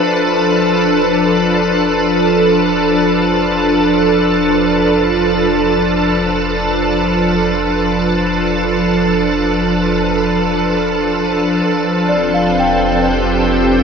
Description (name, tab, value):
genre	ambient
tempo	free time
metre	none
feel	none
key	unclear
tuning	A4 = 442 Hz
part	soft additive organ-like pad	sustained chords	0.0-13.8 s	F3 to B4	-12 LUFS	equal	ensemble chorus, built-in reverb
part	celesta	arpeggios	0.0-13.8 s	D5 to A5	-20 LUFS	equal	tape echo
part	round analog bass	bass	0.0-13.8 s	F1	-27 LUFS	equal	none
room	wet huge ambient reverb, RT60 7.1 s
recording	none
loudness	-12 LUFS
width	side -6 dB against mid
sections	0.0-13.8 A section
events	fade-in on analog synth bass 0.0-13.8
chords	0.0 G7/F; 11.7 Fadd9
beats	free time